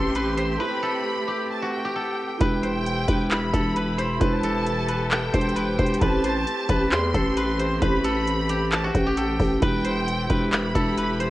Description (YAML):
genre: hip hop, trap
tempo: 133 BPM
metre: 4/4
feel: half-time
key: E minor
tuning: A4 = 441 Hz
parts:
  - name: steel-string zither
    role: melody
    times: 0.0-11.3 s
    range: F#4 to C5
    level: -28 LUFS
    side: left 1 dB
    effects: low-pass filter
  - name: clear studio violin section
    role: second line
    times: 0.0-11.3 s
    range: G5 to C6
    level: -30 LUFS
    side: right 1 dB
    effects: cassette tape, tape echo
  - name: felt-muted upright piano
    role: accompaniment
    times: 0.0-11.3 s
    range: E3 to C5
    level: -35 LUFS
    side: right 6 dB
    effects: low-pass filter, cassette tape
  - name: clear symphonic string section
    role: sustained chords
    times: 0.0-11.3 s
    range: E3 to A4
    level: -31 LUFS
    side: left 1 dB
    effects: cassette tape
  - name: growling 808-style bass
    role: bass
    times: 0.0-11.3 s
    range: E1 to E2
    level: -24 LUFS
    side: equal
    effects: none
  - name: booming analog drum machine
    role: drums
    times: 0.1-11.3 s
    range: handclaps, hi-hat, kick drum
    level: -25 LUFS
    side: equal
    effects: cassette tape
room: studio reverb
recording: home recording on cassette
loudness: -21 LUFS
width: side -16 dB against mid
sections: 0.0-2.4 A section; 2.4-11.3 B section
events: break 0.6-2.4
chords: 0.0 Am7; 2.4 Em; 6.0 Am7; 9.6 Em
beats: 0.15 | 0.60 1.05 1.50 1.95 | 2.41 2.86 3.31 3.76 | 4.21 4.66 5.11 5.56 | 6.01 6.47 6.92 7.37 | 7.82 8.27 8.72 9.17 | 9.62 10.07 10.53 10.98